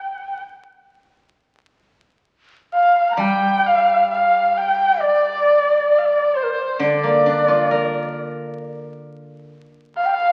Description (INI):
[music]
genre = chinese traditional, Chinese chamber ensemble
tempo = 66 BPM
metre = 4/4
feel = rubato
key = G yu mode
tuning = A4 = 441 Hz
[part]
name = xiao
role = melody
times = 0.0-10.3 s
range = Bb4 to Bb5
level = -20 LUFS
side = equal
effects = none
[part]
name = dark erhu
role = second line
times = 0.0-10.3 s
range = C5 to Bb5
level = -23 LUFS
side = equal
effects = none
[part]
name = steel-string zither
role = accompaniment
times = 3.2-9.5 s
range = D3 to Bb4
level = -26 LUFS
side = equal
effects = none
[sound]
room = wet recital hall reverb, RT60 1.7 s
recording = very old 78 rpm record, vinyl crackle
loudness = -18 LUFS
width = mono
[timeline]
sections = 0.0-1.4 A section; 1.4-10.3 B section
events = none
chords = none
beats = 0.41 | 1.35 2.28 3.20 4.11 | 5.01 5.92 6.82 7.71 | 8.61 9.52